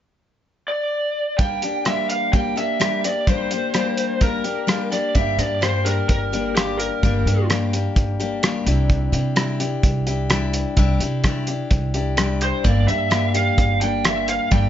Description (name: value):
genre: folk rock and heartland rock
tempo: 128 BPM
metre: 4/4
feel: straight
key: G dorian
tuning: A4 = 442 Hz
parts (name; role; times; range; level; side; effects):
- lead guitar through a small cranked amp; melody; 0.7-7.5, 12.4-14.7 s; G4 to G5; -23 LUFS; right 1 dB; overdrive
- picked steel-string acoustic guitar; accompaniment; 1.4-14.7 s; G2 to G4; -24 LUFS; left 5 dB; none
- cloth-damped thuddy drum kit; drums; 1.4-14.6 s; hi-hat, kick drum, rim click; -21 LUFS; right 1 dB; none
- upright bass; bass; 5.2-14.7 s; G1 to C3; -22 LUFS; right 1 dB; none
room: light reverb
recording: nothing above 7.6 kHz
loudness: -18 LUFS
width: side -10 dB against mid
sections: 0.0-1.4 A section; 1.4-5.2 B section; 5.2-14.7 C section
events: none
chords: 0.0 N.C.; 1.4 Gm; 8.7 Cadd9; 12.6 Gm